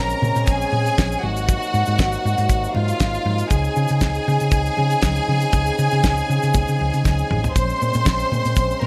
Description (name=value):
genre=disco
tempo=119 BPM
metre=4/4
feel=straight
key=Db major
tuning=A4 = 441 Hz
part: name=clear studio string section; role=second line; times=0.0-8.9 s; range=F4 to C6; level=-25 LUFS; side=equal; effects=none
part: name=mellow French horn section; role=sustained chords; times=0.0-8.9 s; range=C3 to Eb4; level=-31 LUFS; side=equal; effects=none
part: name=hollow-body short-scale fingered electric bass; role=bass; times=0.0-8.9 s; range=Ab1 to Db3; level=-24 LUFS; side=equal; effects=none
part: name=tube shaker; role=percussion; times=0.1-8.8 s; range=none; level=-41 LUFS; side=equal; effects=none
part: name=congas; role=percussion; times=0.2-8.9 s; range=none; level=-34 LUFS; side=equal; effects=none
part: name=damped 70s drum kit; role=drums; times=0.4-8.7 s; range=hi-hat, kick drum, snare drum, toms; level=-22 LUFS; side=equal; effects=none
room=small room ambience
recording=none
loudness=-20 LUFS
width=mono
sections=0.0-8.9 A section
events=drum fill 7.1-7.6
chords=0.0 Bbm9; 1.2 Ab13; 3.5 Db5; 7.6 Bbm9